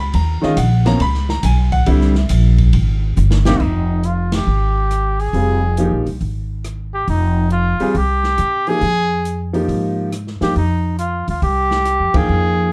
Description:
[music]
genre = modal jazz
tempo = 138 BPM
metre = 4/4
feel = swing 67% on 8ths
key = F minor from 3.6 s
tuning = A4 = 440 Hz
[part]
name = warm concert grand piano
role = accompaniment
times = 0.0-12.7 s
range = B2 to B5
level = -22 LUFS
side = equal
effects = none
[part]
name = upright bass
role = bass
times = 0.0-12.7 s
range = F1 to C3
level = -19 LUFS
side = equal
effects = none
[part]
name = open jazz drum kit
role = drums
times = 0.1-12.2 s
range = crash cymbal, hi-hat, kick drum, ride cymbal, rim click, snare drum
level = -27 LUFS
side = equal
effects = none
[part]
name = mellow trumpet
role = melody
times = 3.5-12.7 s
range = Eb4 to Ab4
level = -22 LUFS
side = equal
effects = none
[sound]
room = light reverb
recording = dark, warm production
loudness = -17 LUFS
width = mono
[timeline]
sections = 0.0-3.6 A section; 3.6-12.7 B section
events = drum fill 3.2-3.6; band accent 4.3, 12.1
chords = 0.0 G#m11; 1.9 C7b13; 3.6 Fm11

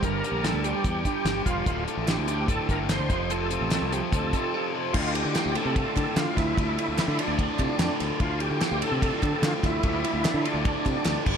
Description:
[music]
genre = classic rock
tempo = 147 BPM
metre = 4/4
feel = straight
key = D minor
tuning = A4 = 441 Hz
[part]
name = overdriven tonewheel organ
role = melody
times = 0.0-11.2 s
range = D4 to C5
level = -30 LUFS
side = right 2 dB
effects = slow rotary speaker, chorus vibrato, slapback echo
[part]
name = overdriven electric guitar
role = riff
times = 0.0-11.4 s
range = D2 to G4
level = -32 LUFS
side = right 10 dB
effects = phaser
[part]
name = tight distorted guitar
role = riff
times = 0.0-11.4 s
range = D2 to G3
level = -31 LUFS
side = left 11 dB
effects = distortion, slapback echo
[part]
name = growling fingered electric bass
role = bass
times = 0.0-11.4 s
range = D1 to D3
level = -30 LUFS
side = equal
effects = overdrive
[part]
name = damped 70s drum kit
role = drums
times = 0.0-11.4 s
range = crash cymbal, hi-hat, kick drum, ride cymbal, snare drum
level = -28 LUFS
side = equal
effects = none
[part]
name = group handclap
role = percussion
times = 2.1-11.2 s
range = none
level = -41 LUFS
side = right 9 dB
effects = none
[sound]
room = moderate lush hall reverb, RT60 2.1 s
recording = big arena sound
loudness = -23 LUFS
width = side -7 dB against mid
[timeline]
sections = 0.0-4.9 A section; 4.9-11.4 B section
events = break 4.5-4.9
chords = 0.0 Gm; 1.7 D5; 3.1 F; 4.9 Dm

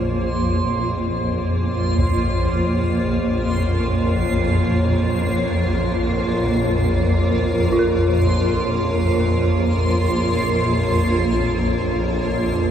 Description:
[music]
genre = dark ambient drone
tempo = free time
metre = none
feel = none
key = unclear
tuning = A4 = 439 Hz
[part]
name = granular cloud pad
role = sustained chords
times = 0.0-12.7 s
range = Bb3 to Db5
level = -22 LUFS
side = equal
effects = built-in reverb
[part]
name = swarming drone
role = drone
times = 0.0-12.7 s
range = Bb1 to F2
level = -20 LUFS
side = equal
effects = built-in reverb
[part]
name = backwards swelling texture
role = texture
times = 0.0-12.7 s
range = C6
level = -28 LUFS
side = right 2 dB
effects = built-in reverb
[part]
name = solo taiko drums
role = percussion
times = 2.0-2.2 s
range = none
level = -28 LUFS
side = left 1 dB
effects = none
[part]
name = dark detuned synth bell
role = arpeggios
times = 7.7-12.7 s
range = F4 to Bb4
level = -28 LUFS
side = right 1 dB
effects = none
[sound]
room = wet cathedral reverb, RT60 5.1 s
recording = none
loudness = -17 LUFS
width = side -9 dB against mid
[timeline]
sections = 0.0-12.7 A section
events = none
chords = 0.0 Bbmadd9

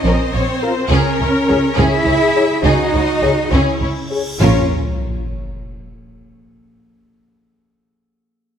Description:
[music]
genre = cinematic, epic orchestral film score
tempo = 69 BPM (dotted quarters)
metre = 6/8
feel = straight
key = Bb minor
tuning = A4 = 438 Hz
[part]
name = rich symphonic violin section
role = melody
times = 0.0-4.7 s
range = C5 to Fb5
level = -26 LUFS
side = left 3 dB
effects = none
[part]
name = rich symphonic viola section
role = accompaniment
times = 0.0-4.7 s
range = Fb4 to Eb5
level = -22 LUFS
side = left 1 dB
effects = none
[part]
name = warm studio cello section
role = bass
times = 0.0-4.7 s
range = C4 to Fb4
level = -18 LUFS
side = right 1 dB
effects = none
[part]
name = warm studio double bass section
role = bass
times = 0.0-4.7 s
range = Bb1 to Db2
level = -18 LUFS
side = right 2 dB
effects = none
[part]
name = warm symphonic violin section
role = second line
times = 0.1-4.7 s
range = Db4 to Fb5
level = -23 LUFS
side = left 2 dB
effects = none
[part]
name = mellow French horn section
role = sustained chords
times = 0.6-4.7 s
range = F4 to Db5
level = -23 LUFS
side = left 5 dB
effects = none
[part]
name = cymbal swell and sub drop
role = sound effects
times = 3.8-6.1 s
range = none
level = -26 LUFS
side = left 1 dB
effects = none
[part]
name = timpani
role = percussion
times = 4.4-4.7 s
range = Bb2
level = -24 LUFS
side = right 1 dB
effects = none
[sound]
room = moderate concert hall reverb, RT60 2.1 s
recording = none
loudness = -13 LUFS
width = side -8 dB against mid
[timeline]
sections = 0.0-4.4 A section; 4.4-6.1 B section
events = cymbal swell 3.8-4.4; impact 4.4-6.1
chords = 0.0 Bbm; 0.9 Dbm; 4.4 Bbm

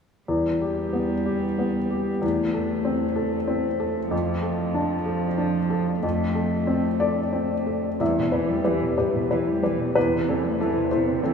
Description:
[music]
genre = neoclassical piano and strings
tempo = 62 BPM (dotted quarters)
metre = 6/8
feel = rubato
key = unclear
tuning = A4 = 441 Hz
[part]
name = warm cello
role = second line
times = 0.3-11.3 s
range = G2 to A3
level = -27 LUFS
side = right 1 dB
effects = none
[part]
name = felt-muted upright piano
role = accompaniment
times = 0.3-11.3 s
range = E2 to E5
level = -23 LUFS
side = left 1 dB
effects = none
[sound]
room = wet cathedral reverb, RT60 6.7 s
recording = recorded in a church or concert hall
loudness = -22 LUFS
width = side -6 dB against mid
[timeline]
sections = 0.3-8.0 A section; 8.0-11.3 B section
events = none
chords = 0.3 Em; 2.2 Am/E; 4.1 Dm/F; 6.0 F; 8.0 Em; 10.0 Amadd9/E

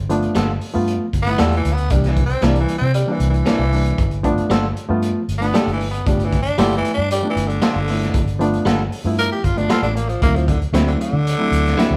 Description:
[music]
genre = straight-eighth soul blues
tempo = 116 BPM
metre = 4/4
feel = straight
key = G mixolydian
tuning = A4 = 440 Hz
[part]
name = vintage muted fingered electric bass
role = bass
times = 0.0-12.0 s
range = G1 to D3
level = -23 LUFS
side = equal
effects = none
[part]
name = barky reed electric piano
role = accompaniment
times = 0.1-11.8 s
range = E3 to F4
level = -25 LUFS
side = equal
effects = none
[part]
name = crunchy breakbeat drum kit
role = drums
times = 0.1-11.9 s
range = hi-hat, kick drum, snare drum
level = -24 LUFS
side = equal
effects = none
[part]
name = direct-recorded clean electric guitar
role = stabs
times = 0.4-11.9 s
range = C3 to A4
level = -26 LUFS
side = equal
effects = none
[part]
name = growling tenor saxophone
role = second line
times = 1.2-12.0 s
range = D3 to Bb4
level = -25 LUFS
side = equal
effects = none
[sound]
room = moderate large studio reverb, RT60 1.4 s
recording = band playing live in one room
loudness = -18 LUFS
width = mono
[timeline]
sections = 0.0-12.0 A section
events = tenor saxophone solo 0.0-12.0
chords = 0.0 G9; 1.9 C9; 4.0 G9; 10.2 D9

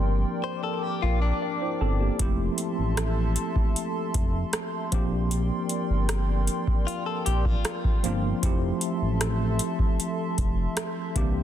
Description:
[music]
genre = contemporary R&B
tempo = 77 BPM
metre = 4/4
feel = straight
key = F major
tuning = A4 = 439 Hz
[part]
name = tine electric piano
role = accompaniment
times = 0.0-11.4 s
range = D3 to A5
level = -30 LUFS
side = right 1 dB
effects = medium stereo tremolo
[part]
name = hollow soft pad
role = sustained chords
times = 0.0-11.4 s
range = Bb3 to D6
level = -33 LUFS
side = equal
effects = chorus, sidechain pumping
[part]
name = smooth gliding synth bass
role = bass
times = 0.0-11.4 s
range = F1 to C2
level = -26 LUFS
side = equal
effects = none
[part]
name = direct-recorded clean electric guitar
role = arpeggios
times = 0.4-2.2, 6.9-8.4 s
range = D4 to C5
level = -32 LUFS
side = left 9 dB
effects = ping-pong delay
[part]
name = booming analog drum machine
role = drums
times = 2.2-11.3 s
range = hi-hat, kick drum, rim click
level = -26 LUFS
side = equal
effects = none
[sound]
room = little or no reverb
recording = dense, heavily limited modern master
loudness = -24 LUFS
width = side -11 dB against mid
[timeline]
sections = 0.0-11.4 A section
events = tine electric piano fill 1.0-2.2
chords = 0.0 Bb69; 2.2 Fmaj7; 4.9 Bb69; 8.4 Fmaj7

